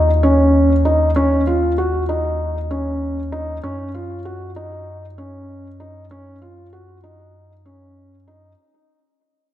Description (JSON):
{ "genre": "piano and strings electronica", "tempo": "97 BPM", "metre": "4/4", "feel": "straight", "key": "unclear", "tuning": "A4 = 440 Hz", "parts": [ { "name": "felt-muted upright piano", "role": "riff", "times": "0.0-8.5 s", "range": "Db4 to Gb4", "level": "-19 LUFS", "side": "equal", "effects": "analog delay" }, { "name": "warm sub bass", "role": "bass", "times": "0.0-8.6 s", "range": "Eb2 to Gb2", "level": "-21 LUFS", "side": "equal", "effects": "tube saturation" } ], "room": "wet plate reverb, RT60 2.4 s", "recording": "dreamy mix soaked in reverb", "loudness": "-16 LUFS", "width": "side -12 dB against mid", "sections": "0.0-8.6 A section", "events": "fade-out 0.0-8.6", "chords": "0.0 Eb7(no3); 3.6 Gb5", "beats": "0.54 | 1.16 1.78 2.40 3.01 | 3.63 4.25 4.87 5.49 | 6.11 6.72 7.34 7.96" }